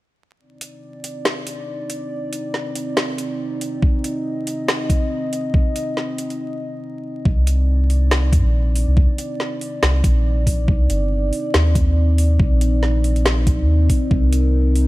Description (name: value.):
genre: deep dubstep.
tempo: 140 BPM.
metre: 4/4.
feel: swing 55% on 16ths, half-time.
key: C minor.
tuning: A4 = 440 Hz.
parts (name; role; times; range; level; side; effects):
dark analog pad; sustained chords; 0.4-14.9 s; C4 to Eb5; -25 LUFS; equal; chorus.
garage drum kit; drums; 0.6-14.8 s; hi-hat, snare drum; -23 LUFS; equal; overdrive, studio reverb.
electronic kick drum; drums; 3.8-14.2 s; none; -17 LUFS; equal; overdrive, studio reverb.
soft dub sub bass; bass; 7.3-14.9 s; G1 to G2; -16 LUFS; equal; none.
room: digital ambience.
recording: vinyl crackle.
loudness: -16 LUFS.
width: side -18 dB against mid.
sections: 0.4-7.3 A section; 7.3-14.9 B section.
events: break 6.4-7.3.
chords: 0.4 Cmadd9.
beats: | 0.40 0.83 1.25 1.68 | 2.11 2.54 2.97 3.40 | 3.83 4.25 4.68 5.11 | 5.54 5.97 6.40 6.83 | 7.25 7.68 8.11 8.54 | 8.97 9.40 9.83 10.25 | 10.68 11.11 11.54 11.97 | 12.40 12.83 13.25 13.68 | 14.11 14.54.